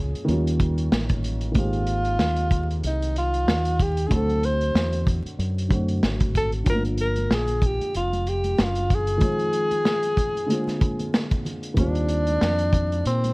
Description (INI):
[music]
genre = hip hop, jazz-hop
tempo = 94 BPM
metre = 4/4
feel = swing 57% on 16ths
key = Eb major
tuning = A4 = 445 Hz
[part]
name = dark upright piano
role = accompaniment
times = 0.0-13.3 s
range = D3 to Ab4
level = -28 LUFS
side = equal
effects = none
[part]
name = deep dub fingered electric bass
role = bass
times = 0.0-13.3 s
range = F1 to Bb2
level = -25 LUFS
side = equal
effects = none
[part]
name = vintage drum kit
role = drums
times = 0.2-13.3 s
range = hi-hat, kick drum, snare drum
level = -25 LUFS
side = equal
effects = none
[part]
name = dark tenor saxophone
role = melody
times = 1.6-13.3 s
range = C4 to C5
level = -25 LUFS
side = equal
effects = none
[part]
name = egg shaker and congas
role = percussion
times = 6.7-13.3 s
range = none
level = -37 LUFS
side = equal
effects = none
[sound]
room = small room ambience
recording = worn, warbling old tape, cassette tape, vinyl crackle, warbly pitch drift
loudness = -20 LUFS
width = side -25 dB against mid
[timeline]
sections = 0.0-13.3 A section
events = none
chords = 0.3 Eb9; 1.6 Abmaj9; 4.1 D7; 6.7 Gm7; 9.2 Fm7; 10.5 Bb9; 11.8 Eb69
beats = 0.28 0.92 | 1.56 2.20 2.84 3.48 | 4.11 4.75 5.39 6.03 | 6.67 7.31 7.94 8.58 | 9.22 9.86 10.50 11.13 | 11.77 12.41 13.05